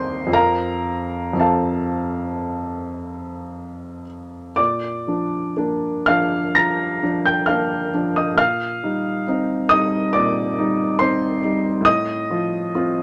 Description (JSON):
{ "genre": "classical, romantic nocturne for solo piano", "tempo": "55-71 BPM", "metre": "4/4", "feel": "rubato", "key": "Bb major", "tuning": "A4 = 440 Hz", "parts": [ { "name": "warm upright piano", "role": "solo", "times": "0.0-13.0 s", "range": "Eb2 to Bb6", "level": "-21 LUFS", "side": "equal", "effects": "none" } ], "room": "moderate studio reverb, RT60 0.6 s", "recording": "none", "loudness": "-20 LUFS", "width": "mono", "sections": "0.0-4.6 A section; 4.6-13.0 B section", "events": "none", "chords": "0.3 F; 4.6 Bb; 8.4 Cm7/Bb; 11.9 F/A" }